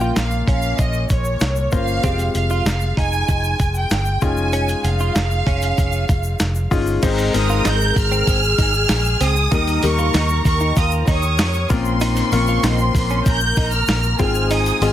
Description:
piano-driven pop; 96 BPM; 4/4; straight; A4 = 440 Hz
warm studio violin section; melody; 0.0-14.9 s; Db5 to G6; -22 LUFS; right 2 dB; plate reverb
clear upright piano; accompaniment; 0.0-14.9 s; Ab2 to Eb5; -24 LUFS; left 5 dB; plate reverb
direct-recorded clean electric guitar; riff; 0.0-14.8 s; C4 to F4; -27 LUFS; right 4 dB; analog chorus
vintage muted fingered electric bass; bass; 0.0-14.9 s; F1 to F2; -20 LUFS; equal
egg shaker; percussion; 0.0-14.9 s; -37 LUFS; left 6 dB
dusty soul sampler-style drum kit; drums; 0.2-14.9 s; crash cymbal, handclaps, hi-hat, kick drum, snare drum; -21 LUFS; equal
warm studio violin section; second line; 7.0-14.9 s; C4 to Db6; -26 LUFS; equal; plate reverb
light reverb; dense, heavily limited modern master; -16 LUFS; side -11 dB against mid
0.0-7.0 A section; 7.0-14.9 B section
0.0 Bbm; 2.0 Fmadd9; 4.2 Dbadd9/F; 7.0 Ab; 9.5 Eb; 11.7 Bbmadd9; 14.2 Fm/Ab
0.17 0.79 1.42 | 2.04 2.66 3.29 3.91 | 4.53 5.16 5.78 6.40 | 7.03 7.65 8.27 8.90 | 9.52 10.14 10.77 11.39 | 12.01 12.64 13.26 13.88 | 14.51

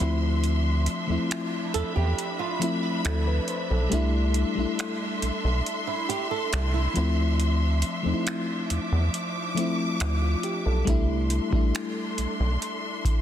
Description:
contemporary R&B; 69 BPM; 4/4; straight; A4 = 441 Hz
mellow FM electric piano; accompaniment; 0.0-13.2 s; F3 to C5; -29 LUFS; left 2 dB; chorus
warm studio string section; sustained chords; 0.0-13.2 s; F3 to D6; -32 LUFS; equal
flamenco guitar; arpeggios; 0.0-7.2 s; D4 to A4; -33 LUFS; right 11 dB; ping-pong delay
rubbery square bass; bass; 0.0-12.6 s; B1 to E2; -24 LUFS; equal
booming analog drum machine; drums; 0.0-13.2 s; finger snaps, hi-hat, kick drum; -30 LUFS; right 1 dB; overdrive, soft clipping on snare
light reverb, digital ambience; dense, heavily limited modern master; -24 LUFS; side -10 dB against mid
0.0-13.2 A section
break 0.0-10.9
0.0 Dm9; 3.9 C69; 7.0 Dm9; 10.9 C69
| 0.44 1.31 2.18 3.05 | 3.92 4.79 5.66 6.53 | 7.39 8.27 9.13 10.00 | 10.87 11.74 12.61

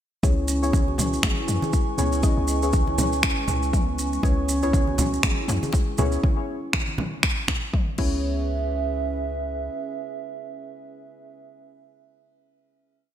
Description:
afro house; 120 BPM; 4/4; swing 58% on 16ths; C# minor; A4 = 440 Hz
dark analog pad; sustained chords; 0.2-11.4 s; C#4 to C#6; -31 LUFS; right 4 dB; chorus, sidechain pumping
marimba with soft mallets; arpeggios; 0.2-8.4 s; G#3 to G#4; -30 LUFS; equal; sidechain pumping, ping-pong delay
deep mellow chord stab; stabs; 0.2-11.4 s; B3 to D#5; -31 LUFS; left 2 dB; chorus, sidechain pumping, ping-pong delay
warm 808-style bass; bass; 0.2-9.7 s; G#1 to F#2; -27 LUFS; equal; sidechain pumping
electronic kick drum; drums; 0.2-8.1 s; -23 LUFS; equal; studio reverb
congas; percussion; 0.2-7.6 s; -30 LUFS; right 2 dB
maracas; percussion; 0.2-6.2 s; -33 LUFS; right 4 dB
deep house drum kit; drums; 1.0-8.1 s; crash cymbal, finger snaps, toms; -26 LUFS; left 1 dB; studio reverb, gated reverb
djembe; percussion; 4.6-5.8 s; -32 LUFS; left 2 dB
light reverb, small room ambience; bright 1980s-style digital production; -21 LUFS; side -10 dB against mid
0.2-8.2 groove; 8.2-12.2 final hit
0.2 C#m7
| 0.23 0.73 1.23 1.73 | 2.23 2.73 3.23 3.73 | 4.23 4.73 5.23 5.73 | 6.23 6.73 7.23 7.73 | 8.23 8.73 9.23 9.73 | 10.23 10.73 11.23

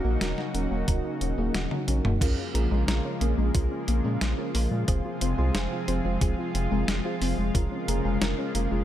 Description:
synthwave; 90 BPM; 4/4; straight; Bb minor; A4 = 438 Hz
lush unison pad; sustained chords; 0.0-8.8 s; C3 to Ab4; -31 LUFS; equal; chorus, sidechain pumping
soft round pluck; arpeggios; 0.0-8.8 s; Ab3 to Ab4; -33 LUFS; left 4 dB; lush chorus, tape echo
mellow FM electric piano; stabs; 0.0-8.8 s; C4 to C5; -35 LUFS; right 4 dB; chorus, phaser, tape echo
round analog bass; bass; 0.0-8.8 s; Eb1 to Bb2; -27 LUFS; equal
clean 12-bit digital drum machine; drums; 0.2-8.7 s; crash cymbal, hi-hat, snare drum, toms; -31 LUFS; left 1 dB
electronic kick drum; drums; 0.9-7.7 s; -26 LUFS; equal
light reverb, digital ambience; -24 LUFS; side -12 dB against mid
0.0-2.2 A section; 2.2-8.8 B section
drum fill 1.5-2.2
0.0 Ebm7; 2.2 Bbm7; 4.9 Fm; 7.5 Bbm7/F
0.21 0.88 1.54 | 2.21 2.88 3.54 4.21 | 4.88 5.54 6.21 6.88 | 7.54 8.21

